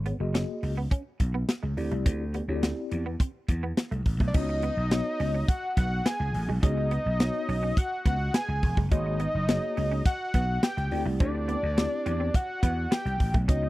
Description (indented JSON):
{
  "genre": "early-eighties boogie funk",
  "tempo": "105 BPM",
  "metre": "4/4",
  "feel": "straight",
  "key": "unclear",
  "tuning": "A4 = 440 Hz",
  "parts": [
    { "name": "vintage slap bass", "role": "bass", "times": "0.0-13.7 s", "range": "E1 to E2", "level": "-29 LUFS", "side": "equal", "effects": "none" },
    { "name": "mellow tine electric piano", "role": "accompaniment", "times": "0.1-13.7 s", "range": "A#3 to D#5", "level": "-34 LUFS", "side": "left 2 dB", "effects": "medium stereo tremolo" },
    { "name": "semi-hollow electric guitar", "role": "riff", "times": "0.1-13.7 s", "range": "G#3 to D4", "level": "-38 LUFS", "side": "right 5 dB", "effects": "ensemble chorus" },
    { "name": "tight funk drum kit", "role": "drums", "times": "0.1-13.6 s", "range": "crash cymbal, hi-hat, kick drum, snare drum", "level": "-24 LUFS", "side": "equal", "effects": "none" },
    { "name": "fat analog lead", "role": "melody", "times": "4.3-13.7 s", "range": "D5 to G#5", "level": "-31 LUFS", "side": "equal", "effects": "none" }
  ],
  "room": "small room ambience",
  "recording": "dry, close 1970s-style studio recording",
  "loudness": "-25 LUFS",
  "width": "side -17 dB against mid",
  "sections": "0.0-4.3 A section; 4.3-13.7 B section",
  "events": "none",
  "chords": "0.0 G#9sus4; 1.8 D9sus4; 4.3 C#9sus4; 8.9 G#9sus4; 10.9 D9sus4"
}